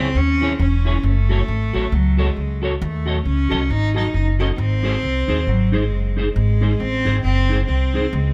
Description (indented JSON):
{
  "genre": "ska",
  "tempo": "136 BPM",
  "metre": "4/4",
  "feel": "swing 58% on 8ths",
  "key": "unclear",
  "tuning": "A4 = 441 Hz",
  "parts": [
    { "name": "rich cello", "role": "melody", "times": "0.0-8.3 s", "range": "F#3 to D#4", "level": "-25 LUFS", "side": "equal", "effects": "tape echo" },
    { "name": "clean electric guitar", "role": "accompaniment", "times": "0.0-8.1 s", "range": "D#4 to D#5", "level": "-28 LUFS", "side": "equal", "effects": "ensemble chorus, tape echo" },
    { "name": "upright bass", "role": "bass", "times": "0.0-8.3 s", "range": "E1 to D#2", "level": "-21 LUFS", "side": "equal", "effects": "none" }
  ],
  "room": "light reverb",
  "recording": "none",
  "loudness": "-19 LUFS",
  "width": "mono",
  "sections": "0.0-8.3 A section",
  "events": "none",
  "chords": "0.0 C#m; 1.0 F#m; 2.8 D#dim; 4.6 G#"
}